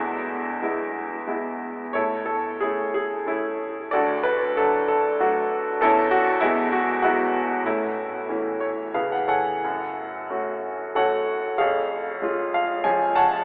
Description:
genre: classical, lyrical solo piano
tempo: 88-100 BPM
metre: 3/4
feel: rubato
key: A major, F# harmonic minor from 9.6 s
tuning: A4 = 440 Hz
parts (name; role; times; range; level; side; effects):
- bright baby grand piano; solo; 0.0-13.4 s; D2 to A5; -24 LUFS; equal; none
room: wet cathedral reverb, RT60 7.3 s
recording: recorded in a church or concert hall, telephone sound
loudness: -24 LUFS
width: mono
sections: 0.0-9.6 A section; 9.6-13.4 B section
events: grand piano fill 8.3-9.6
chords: 0.0 E; 1.9 A; 3.9 D; 5.8 A/E; 6.4 Eadd9; 7.6 A; 8.9 C#7; 9.6 F#m; 11.6 C#/E#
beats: 0.62 1.28 | 1.95 2.62 3.28 | 3.93 4.57 5.20 | 5.81 6.42 7.03 | 7.65 8.28 8.94 | 9.62 10.30 10.96 | 11.60 12.23 12.84

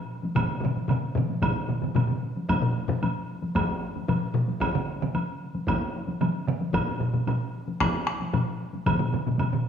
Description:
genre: japanese traditional, taiko drum ensemble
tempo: 113 BPM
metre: 4/4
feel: straight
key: none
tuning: none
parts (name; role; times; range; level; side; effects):
- taiko ensemble; percussion; 0.2-9.5 s; none; -31 LUFS; left 1 dB; none
- taiko ensemble; percussion; 0.4-9.7 s; none; -28 LUFS; left 2 dB; none
- taiko ensemble; percussion; 0.4-9.7 s; none; -29 LUFS; right 3 dB; none
- taiko ensemble; percussion; 0.4-9.0 s; none; -32 LUFS; right 1 dB; none
- woodblock; percussion; 0.4-9.5 s; none; -34 LUFS; right 2 dB; none
room: wet recital hall reverb, RT60 1.7 s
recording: small room ambience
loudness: -24 LUFS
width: side -8 dB against mid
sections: 0.0-2.5 A section; 2.5-9.7 B section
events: none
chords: none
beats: | 0.36 0.89 1.42 1.96 | 2.49 3.02 3.55 4.09 | 4.62 5.15 5.68 6.21 | 6.74 7.27 7.80 8.34 | 8.87 9.40

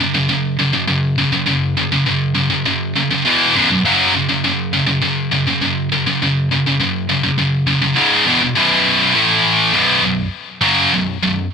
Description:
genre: metal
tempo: 102 BPM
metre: 4/4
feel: straight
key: unclear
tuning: A4 = 440 Hz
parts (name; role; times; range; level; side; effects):
- scooped high-gain guitar; solo; 0.0-11.5 s; B1 to A3; -13 LUFS; equal; distortion, ping-pong delay
room: wet studio ambience, RT60 0.5 s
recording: none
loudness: -13 LUFS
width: side -6 dB against mid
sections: 0.0-8.6 A section; 8.6-11.5 B section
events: none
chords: 0.0 F#5; 3.3 E5; 3.5 B5; 3.8 F#5; 8.0 C#5; 8.3 E5; 8.6 B5; 9.2 A5; 9.7 B5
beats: 0.30 0.89 | 1.48 2.07 2.66 3.25 | 3.84 4.43 5.03 5.62 | 6.21 6.80 7.39 7.98 | 8.57 9.16 9.75 10.34 | 10.93

